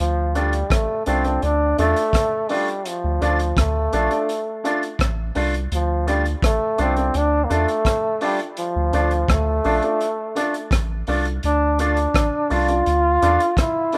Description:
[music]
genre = roots reggae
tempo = 84 BPM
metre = 4/4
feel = straight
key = D minor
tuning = A4 = 440 Hz
[part]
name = clear trombone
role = melody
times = 0.0-14.0 s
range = F3 to F4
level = -23 LUFS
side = equal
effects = tape echo
[part]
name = soft dub sub bass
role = bass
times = 0.0-13.4 s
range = A1 to E2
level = -25 LUFS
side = equal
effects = none
[part]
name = electric guitar with an envelope filter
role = accompaniment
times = 0.3-14.0 s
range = A3 to F4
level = -31 LUFS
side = equal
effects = tape echo
[part]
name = warm upright piano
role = stabs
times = 0.3-14.0 s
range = D4 to D5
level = -28 LUFS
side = equal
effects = none
[part]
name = crunchy breakbeat drum kit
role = drums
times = 0.4-14.0 s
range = hi-hat, kick drum, rim click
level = -26 LUFS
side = equal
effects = none
[sound]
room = small room ambience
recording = rough home demo mix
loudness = -20 LUFS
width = mono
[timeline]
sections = 0.0-14.0 A section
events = none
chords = 0.0 Dm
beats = 0.71 1.42 2.14 | 2.85 3.57 4.28 5.00 | 5.71 6.43 7.14 7.86 | 8.57 9.29 10.00 10.72 | 11.43 12.14 12.86 13.57

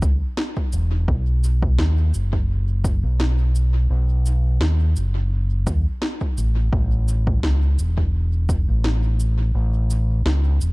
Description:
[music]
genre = ambient dub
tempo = 85 BPM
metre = 4/4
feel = swing 54% on 16ths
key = B mixolydian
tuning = A4 = 441 Hz
[part]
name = fingered electric bass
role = bass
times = 0.0-10.7 s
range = E1 to D#2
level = -18 LUFS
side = equal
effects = none
[part]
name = electronic cabasa and snare drum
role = drums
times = 0.0-10.7 s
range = none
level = -29 LUFS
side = equal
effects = dub echo
[part]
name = electronic kick drum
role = drums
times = 0.0-8.6 s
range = none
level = -23 LUFS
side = equal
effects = overdrive
[sound]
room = little or no reverb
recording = dark, warm production, faint mains hum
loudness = -18 LUFS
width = side -24 dB against mid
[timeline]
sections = 0.0-10.7 A section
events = none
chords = none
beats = 0.37 | 1.08 1.79 2.49 3.20 | 3.90 4.61 5.32 6.02 | 6.73 7.43 8.14 8.85 | 9.55 10.26

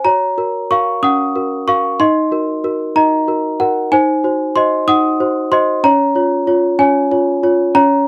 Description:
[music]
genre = classical, lullaby for celesta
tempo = 63 BPM (dotted quarters)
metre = 6/8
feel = straight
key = Db major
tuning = A4 = 440 Hz
[part]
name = worn celesta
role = solo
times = 0.0-8.1 s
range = Db4 to Eb6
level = -15 LUFS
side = equal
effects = none
[sound]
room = light reverb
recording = close, detailed microphones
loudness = -15 LUFS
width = mono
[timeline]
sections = 0.1-8.1 A section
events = none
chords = 0.1 Gb; 2.0 Ebm; 3.9 Ab7/Eb; 5.8 Db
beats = | 0.05 1.03 | 2.00 2.96 | 3.93 4.88 | 5.84 6.80 | 7.75

